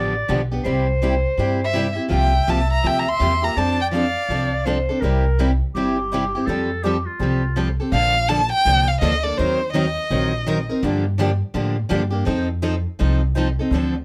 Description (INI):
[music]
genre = acoustic string swing (jazz manouche)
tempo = 165 BPM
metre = 4/4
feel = swing 61% on 8ths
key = F major, Bb major from 7.9 s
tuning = A4 = 440 Hz
[part]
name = bright clarinet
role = second line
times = 0.0-7.8 s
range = F4 to E5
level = -27 LUFS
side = equal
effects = none
[part]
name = picked steel-string acoustic guitar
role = accompaniment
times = 0.0-13.9 s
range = C3 to Bb4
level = -26 LUFS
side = equal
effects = none
[part]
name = picked steel-string acoustic guitar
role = accompaniment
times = 0.0-13.9 s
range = C3 to Bb4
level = -29 LUFS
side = equal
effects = none
[part]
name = upright bass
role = bass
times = 0.0-14.0 s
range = G1 to A2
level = -24 LUFS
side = equal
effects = none
[part]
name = warm violin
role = melody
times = 1.6-4.6, 7.9-10.6 s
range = C5 to C6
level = -23 LUFS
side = equal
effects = none
[sound]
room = light reverb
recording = none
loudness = -20 LUFS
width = mono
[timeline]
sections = 0.0-7.9 A section; 7.9-14.0 B section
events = none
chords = 0.0 G7; 0.7 C; 2.1 C7sus4; 3.6 F6; 5.0 C; 6.5 Fadd9; 7.9 Bbmaj7; 9.4 Ebm6; 10.8 Gm7; 12.3 F7